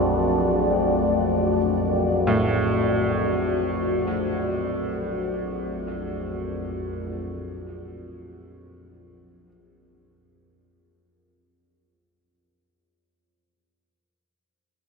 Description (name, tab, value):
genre	dark ambient drone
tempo	free time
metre	none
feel	none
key	unclear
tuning	A4 = 440 Hz
part	deep dark ambient pad	sustained chords	0.0-12.3 s	A3 to Gb5	-24 LUFS	left 2 dB	chorus, built-in reverb, shimmer reverb
part	clear baby grand piano	arpeggios	0.0-12.3 s	A2 to A4	-28 LUFS	right 2 dB	tape echo, shimmer reverb
part	overtone-sweeping drone	drone	0.0-12.4 s	Bb1 to F2	-27 LUFS	equal	chorus, built-in reverb
room	wet huge ambient reverb, RT60 7.5 s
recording	none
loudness	-22 LUFS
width	side -4 dB against mid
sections	0.0-12.3 A section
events	fade-out 0.0-12.3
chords	0.0 D